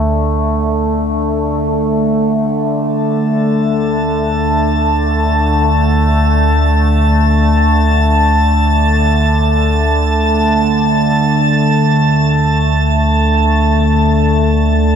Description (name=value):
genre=ambient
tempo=free time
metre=none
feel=none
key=unclear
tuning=A4 = 441 Hz
part: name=deep rumbling drone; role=bass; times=0.0-15.0 s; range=D2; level=-16 LUFS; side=equal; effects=built-in reverb
part: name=overtone-sweeping drone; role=drone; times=0.0-15.0 s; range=D3 to A3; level=-14 LUFS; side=equal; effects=chorus, built-in reverb
part: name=drifting glass-harmonics texture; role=texture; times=3.3-15.0 s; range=A5 to A6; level=-17 LUFS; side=equal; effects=chorus, built-in reverb
room=wet huge ambient reverb, RT60 8.6 s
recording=dark, warm production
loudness=-11 LUFS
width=side -8 dB against mid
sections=0.0-15.0 A section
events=none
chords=0.0 D5